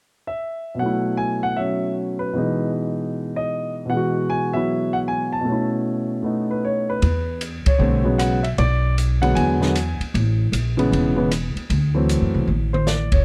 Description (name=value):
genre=jazz piano trio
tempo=154 BPM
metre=4/4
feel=swing 64% on 8ths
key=E major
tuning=A4 = 440 Hz
part: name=warm concert grand piano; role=melody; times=0.3-13.2 s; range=B2 to A5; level=-23 LUFS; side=equal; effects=plate reverb
part: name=upright bass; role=bass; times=7.0-13.2 s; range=E1 to F#2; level=-23 LUFS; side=equal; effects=none
part: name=open jazz drum kit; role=drums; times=7.0-13.2 s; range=hi-hat, kick drum, ride cymbal, rim click, snare drum, toms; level=-27 LUFS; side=equal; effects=none
room=light reverb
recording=dark, warm production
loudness=-21 LUFS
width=mono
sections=0.8-7.0 A section; 7.0-13.2 B section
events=band accent 7.6, 13.1; drum fill 12.5-13.2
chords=0.0 N.C.; 0.8 B7sus4; 2.4 Emaj9/B; 5.5 B9sus4; 7.0 E6; 8.6 Bm; 9.4 E7; 10.1 Amaj7; 11.7 D7